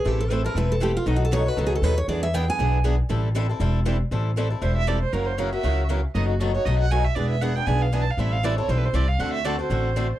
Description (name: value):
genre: acoustic string swing (jazz manouche)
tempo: 236 BPM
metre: 4/4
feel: swing 56% on 8ths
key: unclear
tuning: A4 = 440 Hz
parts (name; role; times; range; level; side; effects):
- picked steel-string acoustic guitar; melody; 0.0-2.8 s; D#4 to G#5; -25 LUFS; right 2 dB; none
- picked steel-string acoustic guitar; accompaniment; 0.0-10.1 s; B2 to B4; -32 LUFS; right 7 dB; none
- picked swing-style acoustic guitar; accompaniment; 0.1-10.1 s; B2 to A4; -29 LUFS; left 6 dB; none
- upright bass; bass; 0.1-10.1 s; E1 to E2; -23 LUFS; equal; none
- warm violin; second line; 4.6-10.2 s; F#4 to A5; -28 LUFS; right 6 dB; none
room: little or no reverb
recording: dry, close 1970s-style studio recording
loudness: -21 LUFS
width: side -13 dB against mid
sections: 0.0-4.1 A section; 4.1-10.2 A section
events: steel-string acoustic guitar solo 0.0-4.1; violin solo 4.1-10.2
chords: 0.0 Am; 1.1 B7; 2.1 E7; 3.1 Am7; 5.1 F#7; 6.2 B7/F#; 7.2 E7; 8.2 Am7; 9.2 D7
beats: | 0.05 0.30 0.56 0.81 | 1.06 1.32 1.57 1.83 | 2.08 2.34 2.59 2.84 | 3.10 3.35 3.61 3.86 | 4.12 4.37 4.62 4.88 | 5.13 5.39 5.64 5.90 | 6.15 6.41 6.66 6.91 | 7.17 7.42 7.68 7.93 | 8.18 8.44 8.69 8.95 | 9.20 9.45 9.71 9.96